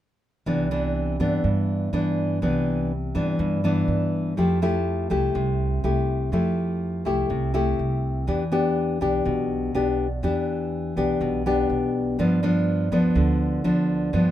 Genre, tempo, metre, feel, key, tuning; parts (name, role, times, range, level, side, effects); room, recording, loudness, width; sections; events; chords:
bossa nova; 123 BPM; 4/4; straight; C major; A4 = 440 Hz
nylon-string guitar; accompaniment; 0.5-14.3 s; G2 to G4; -22 LUFS; left 1 dB
upright bass; bass; 0.5-14.3 s; B1 to G2; -27 LUFS; right 2 dB
light reverb; minimal, uncompressed stereo recording; -21 LUFS; side -12 dB against mid
0.5-14.3 A section
0.5 Cmaj9; 4.4 Fmaj9; 8.3 Em7; 12.2 G7